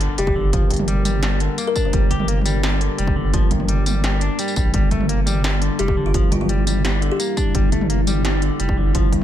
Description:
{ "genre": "half-time drum and bass", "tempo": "171 BPM", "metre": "4/4", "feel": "half-time", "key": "G dorian", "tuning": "A4 = 440 Hz", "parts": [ { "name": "deep dark ambient pad", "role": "sustained chords", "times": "0.2-9.2 s", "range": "G3 to Bb4", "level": "-26 LUFS", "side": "left 2 dB", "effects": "chorus, built-in reverb, sidechain pumping" }, { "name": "semi-hollow electric guitar", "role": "arpeggios", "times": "0.0-9.2 s", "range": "G2 to G4", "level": "-26 LUFS", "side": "left 3 dB", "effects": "tape echo" }, { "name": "saturated sub bass", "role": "bass", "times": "0.0-9.2 s", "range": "F1 to Bb1", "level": "-20 LUFS", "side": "equal", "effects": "none" }, { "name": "industrial drum kit", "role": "drums", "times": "0.0-9.2 s", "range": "hi-hat, snare drum, tambourine, toms", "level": "-25 LUFS", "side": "right 1 dB", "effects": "none" }, { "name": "impact", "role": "sound effects", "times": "0.1-0.5 s", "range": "none", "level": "barely audible", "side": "none", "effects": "none" }, { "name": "kalimba", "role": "melody", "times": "0.2-2.2, 5.8-7.5 s", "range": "F4 to C5", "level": "-27 LUFS", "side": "left 1 dB", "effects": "dub echo" }, { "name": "electronic kick drum", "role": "drums", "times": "0.3-9.2 s", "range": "none", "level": "-21 LUFS", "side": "equal", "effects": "none" } ], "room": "little or no reverb", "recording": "none", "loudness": "-17 LUFS", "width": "side -11 dB against mid", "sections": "0.0-9.2 A section", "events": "impact 0.0-0.5", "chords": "0.0 Gm", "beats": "0.18 | 0.53 0.88 1.23 1.58 | 1.93 2.29 2.64 2.99 | 3.34 3.69 4.04 4.39 | 4.74 5.09 5.44 5.79 | 6.14 6.50 6.85 7.20 | 7.55 7.90 8.25 8.60 | 8.95" }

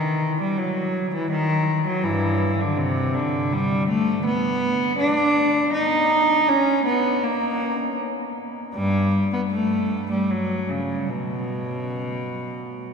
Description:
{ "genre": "classical, baroque-style suite movement for unaccompanied cello", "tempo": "80 BPM", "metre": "3/4", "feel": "uneven beats, rubato", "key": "unclear", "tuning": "A4 = 440 Hz", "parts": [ { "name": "rich cello", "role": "solo", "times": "0.0-12.9 s", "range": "G2 to D#4", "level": "-20 LUFS", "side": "equal", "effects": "none" } ], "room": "wet cathedral reverb, RT60 6.5 s", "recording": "recorded in a church or concert hall", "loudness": "-20 LUFS", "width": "side -5 dB against mid", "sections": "0.0-12.9 A section", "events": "none", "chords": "none", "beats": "0.57 1.30 | 2.04 2.77 3.51 | 4.25 5.00 5.74 | 6.49 7.24 7.99 | 8.74 9.51 10.29 | 11.09 11.91 12.71" }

